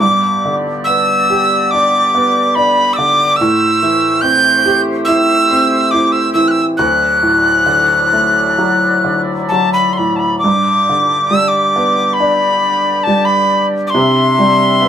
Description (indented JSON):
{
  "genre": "celtic folk, Celtic slow air",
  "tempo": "62-73 BPM",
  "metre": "4/4",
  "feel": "rubato",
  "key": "G major",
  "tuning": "A4 = 441 Hz",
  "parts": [
    { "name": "breathy bright mid whistle", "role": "melody", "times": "0.0-14.9 s", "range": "A5 to G6", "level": "-12 LUFS", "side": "equal", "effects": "none" },
    { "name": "clear upright piano", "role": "accompaniment", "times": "0.0-14.9 s", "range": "D2 to G4", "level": "-16 LUFS", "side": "right 1 dB", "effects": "none" },
    { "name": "warm woodwind section", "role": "sustained chords", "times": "0.0-14.9 s", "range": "F#3 to E5", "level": "-23 LUFS", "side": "left 2 dB", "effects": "none" }
  ],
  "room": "moderate studio reverb, RT60 0.6 s",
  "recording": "band playing live in one room",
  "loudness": "-10 LUFS",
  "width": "side -9 dB against mid",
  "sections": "0.0-10.4 A section; 10.4-14.9 B section",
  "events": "none",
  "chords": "0.0 G; 3.4 Am7; 6.8 Dadd9; 10.4 G; 13.9 C",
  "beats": "| 0.03 0.88 1.73 2.57 | 3.40 4.24 5.08 5.94 | 6.81 7.69 8.59 9.52 | 10.44 11.32 12.20 13.08 | 13.95 14.80"
}